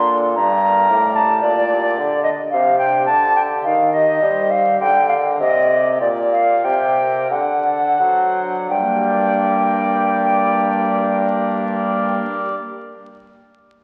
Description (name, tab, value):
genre	classical, baroque-style sonata movement with continuo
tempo	42-57 BPM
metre	3/4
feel	rubato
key	G minor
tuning	A4 = 440 Hz
part	bright baroque flute	melody	0.0-12.2 s	D5 to C6	-19 LUFS	equal	none
part	pipe organ, foundations	accompaniment	0.0-12.6 s	G2 to D5	-26 LUFS	equal	none
part	warm bassoon	bass	0.0-12.2 s	G2 to G3	-23 LUFS	equal	none
room	wet concert hall reverb, RT60 2.3 s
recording	very old 78 rpm record, vinyl crackle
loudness	-17 LUFS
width	mono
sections	0.0-8.7 A section; 8.7-12.8 B section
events	slowing down 0.0-8.7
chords	0.4 Gm; 1.4 Gm/Bb; 3.6 Cm/Eb; 4.8 Gm; 7.3 D7; 8.7 Gm